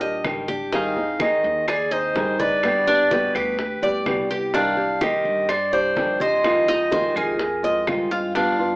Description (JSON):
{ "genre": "latin, Cuban son and guajira", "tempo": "126 BPM", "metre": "4/4", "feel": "straight", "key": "unclear", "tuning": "A4 = 440 Hz", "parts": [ { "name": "warm clarinet", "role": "melody", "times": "0.0-8.8 s", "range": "Bb4 to F5", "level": "-21 LUFS", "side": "equal", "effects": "none" }, { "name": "flamenco guitar", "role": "accompaniment", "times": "0.0-8.8 s", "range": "B2 to Ab4", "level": "-25 LUFS", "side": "equal", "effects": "none" }, { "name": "Cuban tres", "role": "arpeggios", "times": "0.0-8.8 s", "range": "D4 to Eb5", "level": "-25 LUFS", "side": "equal", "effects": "none" }, { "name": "upright bass", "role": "bass", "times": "0.0-8.8 s", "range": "Ab1 to G2", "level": "-36 LUFS", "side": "equal", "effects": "none" }, { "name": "bongos", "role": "percussion", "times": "0.0-8.6 s", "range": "none", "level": "-30 LUFS", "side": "left 1 dB", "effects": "none" }, { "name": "congas", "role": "percussion", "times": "0.0-8.8 s", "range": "none", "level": "-34 LUFS", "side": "equal", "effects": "none" }, { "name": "claves", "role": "percussion", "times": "0.2-8.1 s", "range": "none", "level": "-30 LUFS", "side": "right 1 dB", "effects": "none" } ], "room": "wet studio reverb, RT60 0.6 s", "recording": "heard from further back in the room, AM radio sound", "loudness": "-18 LUFS", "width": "side -24 dB against mid", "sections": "0.0-8.8 A section", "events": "none", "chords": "0.0 Ebmaj7; 0.7 Abmaj7; 2.6 G; 4.5 Cmadd9; 6.4 Fm7" }